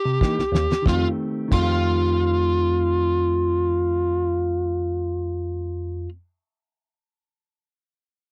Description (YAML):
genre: straight-eighth soul blues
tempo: 91 BPM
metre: 4/4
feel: straight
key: F mixolydian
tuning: A4 = 440 Hz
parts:
  - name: overdriven electric guitar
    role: melody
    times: 0.0-6.1 s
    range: F4 to G4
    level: -25 LUFS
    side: equal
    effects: none
  - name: bell-like tine electric piano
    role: bass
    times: 0.1-6.1 s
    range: C2 to C3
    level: -28 LUFS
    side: equal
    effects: none
  - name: mellow electric guitar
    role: stabs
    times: 0.2-6.2 s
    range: Eb3 to G4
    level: -32 LUFS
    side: equal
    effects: none
  - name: cloth-damped thuddy drum kit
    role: drums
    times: 0.2-1.7 s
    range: crash cymbal, kick drum, snare drum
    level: -24 LUFS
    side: equal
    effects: none
room: little or no reverb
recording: dry, close 1970s-style studio recording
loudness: -22 LUFS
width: mono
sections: 0.9-6.1 A section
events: drum fill 0.2-0.9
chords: 0.0 C7#9; 0.9 F9